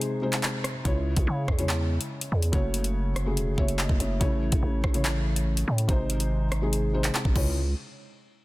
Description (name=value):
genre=hip hop, drill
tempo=143 BPM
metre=4/4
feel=half-time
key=C# harmonic minor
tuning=A4 = 440 Hz
part: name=felt-muted upright piano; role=accompaniment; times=0.0-7.6 s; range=B#2 to E5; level=-30 LUFS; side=left 1 dB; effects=none
part: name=drill drum kit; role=drums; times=0.0-7.5 s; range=crash cymbal, handclaps, hi-hat, kick drum, rim click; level=-28 LUFS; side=equal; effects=none
part: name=growling 808-style bass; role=bass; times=0.9-7.7 s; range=E1 to C#3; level=-27 LUFS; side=equal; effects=none
room=digital ambience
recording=dense, heavily limited modern master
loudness=-24 LUFS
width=side -19 dB against mid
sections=0.0-7.6 A section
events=break 0.0-0.9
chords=0.0 G#; 0.9 C#m; 2.5 F#m; 4.2 A; 5.9 G#; 7.4 C#m; 7.6 N.C.